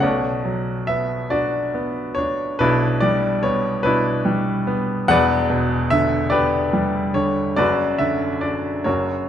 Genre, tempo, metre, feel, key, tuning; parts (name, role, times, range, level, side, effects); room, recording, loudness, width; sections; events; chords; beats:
classical, lyrical solo piano; 48 BPM (dotted quarters); 6/8; rubato; B minor; A4 = 440 Hz
bright baby grand piano; solo; 0.0-9.3 s; E1 to F#5; -18 LUFS; equal
wet recital hall reverb, RT60 1.4 s; dark, warm production; -18 LUFS; side -9 dB against mid
0.0-9.3 A section
0.0 Bmadd9; 2.6 G6/B; 5.1 Em7; 7.6 Bm/F#
| 0.03 1.32 | 2.60 3.85 | 5.09 6.33 | 7.58 8.87